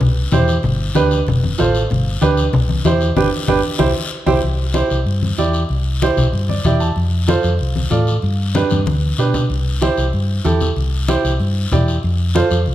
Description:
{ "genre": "latin, cumbia", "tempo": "189 BPM", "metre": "4/4", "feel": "straight", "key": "C major", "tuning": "A4 = 439 Hz", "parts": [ { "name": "hollow-body short-scale fingered electric bass", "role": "bass", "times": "0.0-12.7 s", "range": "F1 to B2", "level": "-18 LUFS", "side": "equal", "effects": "none" }, { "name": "congas", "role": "percussion", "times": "0.0-12.7 s", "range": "none", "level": "-21 LUFS", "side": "left 3 dB", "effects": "none" }, { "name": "guiro", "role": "percussion", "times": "0.0-12.7 s", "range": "none", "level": "-28 LUFS", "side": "left 6 dB", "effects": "none" }, { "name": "clear upright piano", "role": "accompaniment", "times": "0.3-12.6 s", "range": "D4 to A5", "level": "-19 LUFS", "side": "right 4 dB", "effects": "none" } ], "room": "moderate recital hall reverb, RT60 1.4 s", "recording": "dark, warm production", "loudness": "-14 LUFS", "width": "side -13 dB against mid", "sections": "0.0-4.4 A section; 4.4-12.7 B section", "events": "band accent 3.2-4.4; upright piano fill 6.3-7.0; drum fill 8.7-9.5", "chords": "0.0 C; 0.6 G; 1.3 F; 1.9 G; 2.5 C; 3.2 G; 3.8 C; 7.0 F; 8.2 G; 9.5 C; 12.0 F" }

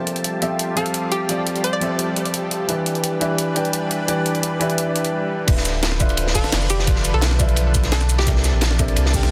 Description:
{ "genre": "liquid drum and bass", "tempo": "172 BPM", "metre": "4/4", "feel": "straight", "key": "D dorian", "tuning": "A4 = 440 Hz", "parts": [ { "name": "warm baby grand piano", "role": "accompaniment", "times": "0.0-9.3 s", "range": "C3 to G5", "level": "-26 LUFS", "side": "equal", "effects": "low-pass filter, tape echo" }, { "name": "lush unison pad", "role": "sustained chords", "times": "0.0-9.3 s", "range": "E3 to A5", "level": "-30 LUFS", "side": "equal", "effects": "chorus, phaser, sidechain pumping" }, { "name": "jungle sampler-style drum kit", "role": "drums", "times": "0.1-9.3 s", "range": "crash cymbal, hi-hat, shaker, snare drum", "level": "-27 LUFS", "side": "equal", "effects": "small room ambience" }, { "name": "hollow square pluck", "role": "melody", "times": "0.8-2.0, 6.4-8.3 s", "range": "G4 to D5", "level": "-30 LUFS", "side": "equal", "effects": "chorus, delay" }, { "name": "sub bass with octave", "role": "bass", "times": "5.5-9.3 s", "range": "D1 to C2", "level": "-22 LUFS", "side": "equal", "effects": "none" }, { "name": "crunchy breakbeat drum kit", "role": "drums", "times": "5.5-9.2 s", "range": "hi-hat, ride cymbal, snare drum", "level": "-28 LUFS", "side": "equal", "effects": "high-pass filter on cymbals, small room ambience, high-pass filter on hats, high-pass filter on snare, high-pass filter on room" }, { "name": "electronic kick drum", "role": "drums", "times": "5.5-9.2 s", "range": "none", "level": "-22 LUFS", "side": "equal", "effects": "small room ambience" } ], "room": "light reverb, studio ambience", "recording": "dense, heavily limited modern master", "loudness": "-20 LUFS", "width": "mono", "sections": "0.0-5.5 A section; 5.5-9.3 B section", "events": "build-up 0.0-5.5; break 5.1-5.5; drop 5.5-9.3", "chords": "0.0 Fmaj9; 2.7 Em7; 5.5 Dm69; 8.3 C13" }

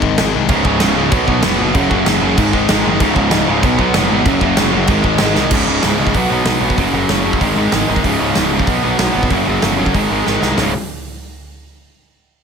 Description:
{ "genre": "punk rock", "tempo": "190 BPM", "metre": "4/4", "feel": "straight", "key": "unclear", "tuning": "A4 = 440 Hz", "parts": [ { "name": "sludgy distorted guitar", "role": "riff", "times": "0.0-10.7 s", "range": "Db2 to Cb4", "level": "-17 LUFS", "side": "left 9 dB", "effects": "overdrive" }, { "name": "fuzz picked electric bass", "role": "bass", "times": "0.0-10.7 s", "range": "Db1 to C2", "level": "-21 LUFS", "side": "right 1 dB", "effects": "overdrive" }, { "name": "big rock drum kit", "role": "drums", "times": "0.0-10.7 s", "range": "crash cymbal, hi-hat, kick drum, snare drum, toms", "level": "-18 LUFS", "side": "right 1 dB", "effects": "none" }, { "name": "distorted electric guitar", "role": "riff", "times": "0.5-10.7 s", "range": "Db2 to Cb4", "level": "-17 LUFS", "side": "right 15 dB", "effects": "overdrive" } ], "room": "light reverb", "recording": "none", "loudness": "-12 LUFS", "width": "side -6 dB against mid", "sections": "0.0-5.5 A section; 5.5-10.6 B section; 10.6-11.9 C section", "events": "drum fill 5.4, 10.3-10.6", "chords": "0.5 Db5; 1.1 Cb5; 1.7 Gb5; 2.4 Ab5; 3.0 Db5; 3.6 Cb5; 4.3 Gb5; 4.9 Ab; 5.5 Db5; 6.1 Cb5; 6.8 Gb5; 7.4 Ab5; 8.0 Db5; 8.7 Cb5; 9.3 Gb5; 9.9 Ab; 10.6 Db5" }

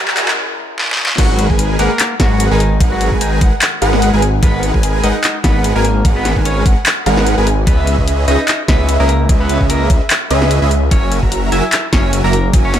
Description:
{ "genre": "future bass", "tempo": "148 BPM", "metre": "4/4", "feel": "swing 55% on 16ths, half-time", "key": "G# minor", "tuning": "A4 = 440 Hz", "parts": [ { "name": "glassy digital keys", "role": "accompaniment", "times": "0.0-1.2 s", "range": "G#3 to A#4", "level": "-30 LUFS", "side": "left 2 dB", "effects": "chorus, phaser, sidechain pumping, ping-pong delay" }, { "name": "supersaw chords", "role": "riff", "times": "0.0-12.8 s", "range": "F#3 to A#5", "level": "-19 LUFS", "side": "right 1 dB", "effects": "sidechain pumping" }, { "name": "dubstep drum kit", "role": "drums", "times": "0.1-12.8 s", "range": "crash cymbal, handclaps, hi-hat, snare drum", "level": "-17 LUFS", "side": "left 1 dB", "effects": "high-pass filter on hats, high-pass filter on snare, high-pass filter on cymbals, high-pass filter on room" }, { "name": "clean electric guitar", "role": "melody", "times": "1.2-12.8 s", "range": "D#3 to E5", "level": "-22 LUFS", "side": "equal", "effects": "sidechain pumping, ping-pong delay" }, { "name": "airy dreamy lead", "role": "arpeggios", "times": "1.2-12.8 s", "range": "E5 to A#5", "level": "-23 LUFS", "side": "equal", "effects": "chorus, sidechain pumping, ping-pong delay" }, { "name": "wide detuned saw bass", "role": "bass", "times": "1.2-12.8 s", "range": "F#1 to C#2", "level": "-15 LUFS", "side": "equal", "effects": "chorus, sidechain pumping" }, { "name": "electronic kick drum", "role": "drums", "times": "1.2-12.6 s", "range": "none", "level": "-14 LUFS", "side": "equal", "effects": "none" } ], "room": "digital ambience", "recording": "high-pass filter", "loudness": "-11 LUFS", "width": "side -10 dB against mid", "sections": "0.0-1.2 A section; 1.2-12.8 B section", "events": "build-up 0.0-1.2; drum fill 0.0-0.4, 0.8-1.2; break 0.4-1.2; drop 1.2-12.8", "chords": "0.0 F#7; 1.2 G#m7; 7.7 C#m7; 10.9 F#7" }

